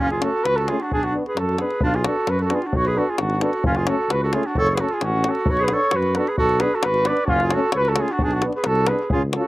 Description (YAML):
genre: balkan folk, Balkan brass band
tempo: 131 BPM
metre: 2/4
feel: straight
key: B dorian sharp4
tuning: A4 = 441 Hz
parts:
  - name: warm flugelhorn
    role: melody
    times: 0.0-9.5 s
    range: E#4 to D5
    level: -22 LUFS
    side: equal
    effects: none
  - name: warm clarinet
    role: second line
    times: 0.0-9.5 s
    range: C#4 to B4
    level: -25 LUFS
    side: right 2 dB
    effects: none
  - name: mellow tuba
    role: bass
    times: 0.0-9.4 s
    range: F#1 to F#2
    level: -25 LUFS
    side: equal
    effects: none
  - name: davul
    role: percussion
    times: 0.1-9.4 s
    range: none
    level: -25 LUFS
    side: left 2 dB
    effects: none
  - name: clear French horn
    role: accompaniment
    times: 0.2-9.4 s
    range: C#4 to E#4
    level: -28 LUFS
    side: left 4 dB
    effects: none
  - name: warm trombone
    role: accompaniment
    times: 0.2-9.4 s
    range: A3 to C#4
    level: -30 LUFS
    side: right 3 dB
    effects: slapback echo
room: little or no reverb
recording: recorded outdoors, with no room sound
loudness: -18 LUFS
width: side -18 dB against mid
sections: 0.0-1.8 A section; 1.8-9.1 A section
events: none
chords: 0.0 F#m; 0.9 Bm; 3.6 F#m; 5.5 Bm; 7.3 F#m; 8.2 Bm